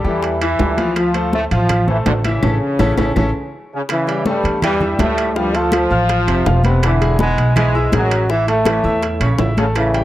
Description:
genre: latin, salsa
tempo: 164 BPM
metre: 4/4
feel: straight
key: unclear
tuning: A4 = 441 Hz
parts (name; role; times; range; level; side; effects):
- bright grand piano; accompaniment; 0.0-10.0 s; E3 to F6; -22 LUFS; left 2 dB; none
- upright bass; bass; 0.0-10.0 s; E1 to E2; -18 LUFS; equal; none
- bongos; percussion; 0.0-10.0 s; none; -25 LUFS; left 5 dB; none
- congas; percussion; 0.0-10.0 s; none; -23 LUFS; left 1 dB; none
- bright trombone section; melody; 0.1-10.0 s; F#2 to F4; -18 LUFS; equal; none
- timbales; percussion; 0.2-10.0 s; none; -27 LUFS; right 6 dB; none
- claves; percussion; 0.4-9.9 s; none; -32 LUFS; equal; none
- brilliant trombone section; second line; 3.9-10.0 s; C3 to A3; -25 LUFS; right 3 dB; none
room: moderate spring reverb, RT60 2.0 s, small room ambience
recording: none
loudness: -14 LUFS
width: side -14 dB against mid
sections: 0.0-3.9 A section; 3.9-10.0 B section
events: band accent 2.4-3.9; drum fill 2.8-3.9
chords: 0.0 A5; 1.0 Dm7; 2.4 A; 3.9 A7; 5.4 Dm7; 6.8 E7; 8.3 A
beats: 0.23 0.60 | 0.97 1.33 1.70 2.07 | 2.43 2.80 3.17 3.53 | 3.90 4.26 4.63 5.00 | 5.36 5.73 6.10 6.46 | 6.83 7.20 7.56 7.93 | 8.29 8.66 9.03 9.39 | 9.76

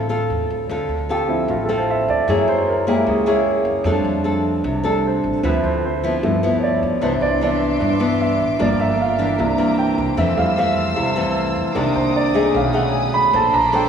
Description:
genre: bossa nova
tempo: 152 BPM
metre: 4/4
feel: straight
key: D minor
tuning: A4 = 440 Hz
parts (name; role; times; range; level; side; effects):
- nylon-string guitar; accompaniment; 0.0-13.9 s; F2 to C5; -20 LUFS; left 2 dB; none
- warm concert grand piano; accompaniment; 0.0-13.9 s; Eb3 to B5; -19 LUFS; right 3 dB; none
- upright bass; bass; 0.0-13.9 s; G1 to G2; -26 LUFS; equal; none
- dark studio string section; sustained chords; 7.0-13.9 s; B3 to E6; -27 LUFS; left 1 dB; none
room: wet church reverb, RT60 3.4 s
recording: recorded in a church or concert hall, small room ambience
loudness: -16 LUFS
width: side -7 dB against mid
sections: 0.7-13.9 A section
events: grand piano solo 0.7-13.9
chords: 0.0 Dm7; 2.3 F#9; 3.9 F6; 5.4 Dm9; 6.2 G13; 7.0 Cmaj9; 8.6 Gm7; 9.4 C9; 10.2 Fmaj7; 11.8 Cm9; 12.5 B13; 13.3 Bbmaj9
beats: 0.30 | 0.70 1.09 1.49 1.88 | 2.28 2.67 3.07 3.46 | 3.86 4.25 4.65 5.04 | 5.44 5.83 6.23 6.62 | 7.02 7.41 7.81 8.20 | 8.60 8.99 9.38 9.78 | 10.17 10.57 10.96 11.36 | 11.75 12.15 12.54 12.94 | 13.33 13.73

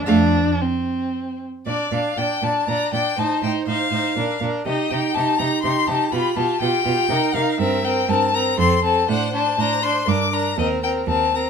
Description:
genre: quick classical-period movement for string quartet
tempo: 120 BPM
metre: 3/4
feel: rubato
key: Bb major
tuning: A4 = 440 Hz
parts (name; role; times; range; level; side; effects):
- warm violin; second line; 0.0-11.5 s; C4 to D5; -25 LUFS; left 2 dB; none
- clear violin; melody; 0.1-11.5 s; D5 to D6; -22 LUFS; left 7 dB; none
- clear viola; accompaniment; 0.1-11.5 s; A3 to F4; -23 LUFS; right 3 dB; none
- rich cello; bass; 0.1-11.5 s; Eb2 to C3; -25 LUFS; right 5 dB; none
room: light reverb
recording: none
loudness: -18 LUFS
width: side -6 dB against mid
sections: 0.0-1.7 A section; 1.7-11.5 B section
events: none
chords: 0.1 F; 1.7 Bb; 3.2 F7/A; 4.2 Bb; 4.7 Cm; 6.1 G7/B; 7.1 Cm7; 7.6 C5/G; 8.6 F; 9.1 D5/A; 10.1 Gm; 10.6 Cm7/Eb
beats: | 0.07 0.60 1.14 | 1.67 2.18 2.68 | 3.19 3.68 4.17 | 4.67 5.16 5.64 | 6.12 6.61 7.10 | 7.60 8.10 8.60 | 9.10 9.60 10.09 | 10.59 11.09

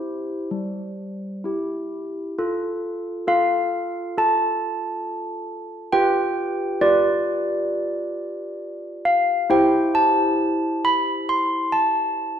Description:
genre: classical, tune for handbells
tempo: 67 BPM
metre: 4/4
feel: straight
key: C major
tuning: A4 = 440 Hz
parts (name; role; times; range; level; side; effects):
- handbells; solo; 0.0-12.4 s; G3 to C6; -20 LUFS; equal; none
room: moderate scoring stage reverb, RT60 1.7 s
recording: dark, warm production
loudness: -20 LUFS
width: side -9 dB against mid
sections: 0.0-2.4 A section; 2.4-12.4 B section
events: none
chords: 0.0 C; 2.4 F; 5.9 G7/F; 9.5 C/E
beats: 0.51 1.45 | 2.37 3.27 4.16 5.05 | 5.93 6.83 7.72 8.62 | 9.51 10.39 11.28 12.16

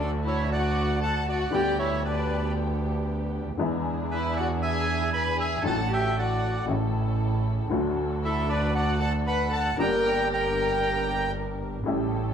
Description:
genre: tango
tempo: 116 BPM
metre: 4/4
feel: rubato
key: unclear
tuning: A4 = 440 Hz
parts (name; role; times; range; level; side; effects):
- bandoneon; melody; 0.0-11.3 s; A4 to B5; -29 LUFS; right 2 dB; none
- warm violin; second line; 0.0-11.3 s; D4 to B4; -30 LUFS; left 3 dB; none
- clear upright piano; accompaniment; 0.0-12.3 s; G1 to G4; -31 LUFS; left 3 dB; none
- dark studio string section; stabs; 0.0-12.3 s; A3 to Bb4; -35 LUFS; equal; none
- warm double bass; bass; 0.0-12.3 s; G1 to E2; -28 LUFS; right 2 dB; none
room: wet large studio reverb, RT60 1.0 s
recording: band playing live in one room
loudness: -24 LUFS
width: side -8 dB against mid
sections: 0.0-12.3 A section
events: none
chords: 0.0 D; 1.5 G/D; 3.6 E7; 5.6 D/A; 6.7 A; 7.7 D; 9.8 Gm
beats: 0.49 1.01 | 1.53 2.04 2.56 3.08 | 3.59 4.10 4.62 5.13 | 5.65 6.16 6.68 7.20 | 7.72 8.24 8.76 9.28 | 9.79 10.31 10.83 11.34 | 11.86

